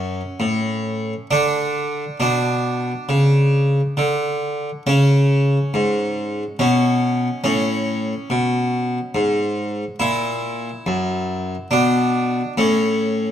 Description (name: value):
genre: classical, baroque-style suite movement for harpsichord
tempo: 70 BPM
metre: 3/4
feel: rubato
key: unclear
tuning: A4 = 439 Hz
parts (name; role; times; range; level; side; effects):
- harpsichord; solo; 0.0-13.3 s; F#2 to E4; -17 LUFS; equal; none
room: wet recital hall reverb, RT60 1.4 s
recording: close, detailed microphones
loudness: -17 LUFS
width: side -10 dB against mid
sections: 0.0-13.3 A section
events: none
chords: 0.0 F#m; 1.3 N.C.; 2.2 Bmadd9; 4.9 C#5; 6.6 Bsus2; 7.4 G#madd11; 10.0 F#7/A#; 11.7 Bm; 12.6 A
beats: 0.39 1.31 | 2.21 3.09 3.98 | 4.87 5.74 6.60 | 7.45 8.30 9.14 | 10.00 10.86 11.71 | 12.57